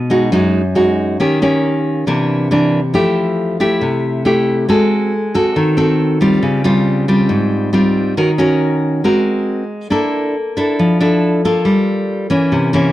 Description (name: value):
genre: bossa nova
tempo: 138 BPM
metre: 4/4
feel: straight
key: unclear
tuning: A4 = 439 Hz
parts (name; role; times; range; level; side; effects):
- nylon-string guitar; solo; 0.0-12.9 s; F#2 to Bb4; -12 LUFS; equal; none
room: light reverb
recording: none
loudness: -12 LUFS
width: side -14 dB against mid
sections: 0.0-2.9 A section; 2.9-12.9 B section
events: none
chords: 0.0 B6; 1.2 Eb7; 2.1 C9; 2.9 Fmaj9; 4.7 Ab7b9; 6.4 Dbmaj7#11; 8.2 Ebm7; 9.0 Ab9; 9.9 Bbmaj7#11; 11.7 Gm9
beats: 0.33 0.76 | 1.20 1.63 2.07 2.50 | 2.94 3.38 3.81 4.25 | 4.68 5.12 5.56 5.99 | 6.43 6.86 7.30 7.73 | 8.17 8.60 9.04 9.47 | 9.91 10.35 10.78 11.21 | 11.65 12.09 12.52